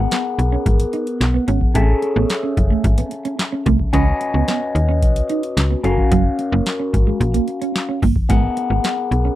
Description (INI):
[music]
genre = early-eighties boogie funk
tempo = 110 BPM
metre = 4/4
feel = straight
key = unclear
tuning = A4 = 440 Hz
[part]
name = overdriven tine electric piano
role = accompaniment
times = 0.0-9.4 s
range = B3 to F#5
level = -22 LUFS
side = left 3 dB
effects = phaser
[part]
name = electric guitar at the edge of break-up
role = riff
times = 0.0-9.4 s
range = F#3 to D#4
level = -22 LUFS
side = right 7 dB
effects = lush chorus
[part]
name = slap-like FM bass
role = bass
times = 0.0-9.3 s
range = F#1 to D#2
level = -18 LUFS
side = equal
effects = none
[part]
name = booming analog drum machine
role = drums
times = 0.1-9.2 s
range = handclaps, hi-hat, kick drum, snare drum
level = -19 LUFS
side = equal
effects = none
[sound]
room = little or no reverb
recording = dry, close 1970s-style studio recording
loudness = -16 LUFS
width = side -14 dB against mid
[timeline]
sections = 0.0-9.4 A section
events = none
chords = 0.0 G#m9; 1.8 Amaj7; 3.9 C#9sus4; 5.8 F#maj7; 8.3 G#m9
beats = 0.12 0.66 1.21 | 1.75 2.30 2.84 3.39 | 3.93 4.48 5.02 5.57 | 6.12 6.66 7.21 7.75 | 8.30 8.84